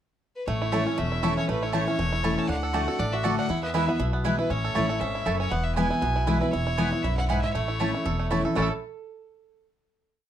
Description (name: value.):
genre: bluegrass.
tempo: 237 BPM.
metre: 4/4.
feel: swing 55% on 8ths.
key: A major.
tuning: A4 = 440 Hz.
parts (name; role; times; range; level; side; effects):
clear fiddle; melody; 0.4-8.7 s; A4 to A5; -32 LUFS; left 1 dB; plate reverb.
picked steel-string acoustic guitar; accompaniment; 0.5-8.7 s; E2 to F#4; -28 LUFS; left 2 dB; none.
bluegrass banjo; arpeggios; 0.5-8.8 s; A3 to A4; -32 LUFS; right 5 dB; none.
upright bass; bass; 0.5-8.7 s; E1 to E2; -30 LUFS; equal; none.
mandolin; stabs; 0.7-8.7 s; A3 to A5; -29 LUFS; right 5 dB; none.
room: moderate studio ambience, RT60 0.4 s.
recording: dark, warm production.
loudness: -23 LUFS.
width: side -10 dB against mid.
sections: 0.0-0.5 pickup bar; 0.5-8.6 A section; 8.6-9.6 final chord.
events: none.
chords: 0.5 A; 2.5 D; 3.5 E; 4.5 A; 5.5 E; 7.5 A.